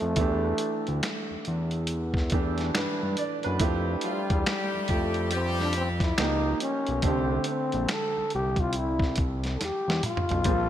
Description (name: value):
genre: R&B, neo-soul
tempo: 70 BPM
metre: 4/4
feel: swing 60% on 16ths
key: unclear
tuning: A4 = 438 Hz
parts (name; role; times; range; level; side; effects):
- growling trombone; melody; 0.0-10.7 s; G3 to A4; -30 LUFS; left 1 dB; none
- clear grand piano; accompaniment; 0.0-10.7 s; D3 to D5; -32 LUFS; right 3 dB; wide subtle chorus
- fat analog bass; bass; 0.0-10.7 s; Bb1 to G2; -29 LUFS; equal; none
- dusty soul sampler-style drum kit; drums; 0.0-10.7 s; finger snaps, hi-hat, kick drum, snare drum, toms; -29 LUFS; equal; gated reverb
- clear horn section; stabs; 4.0-10.7 s; A2 to G4; -34 LUFS; left 2 dB; none
room: light reverb, small room ambience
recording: bright 1980s-style digital production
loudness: -25 LUFS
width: side -11 dB against mid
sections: 0.0-10.5 A section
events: trombone solo 0.0-10.5; drum fill 9.6-10.5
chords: 0.2 Em7; 3.6 Fmaj9; 6.2 C#9; 7.0 Cadd9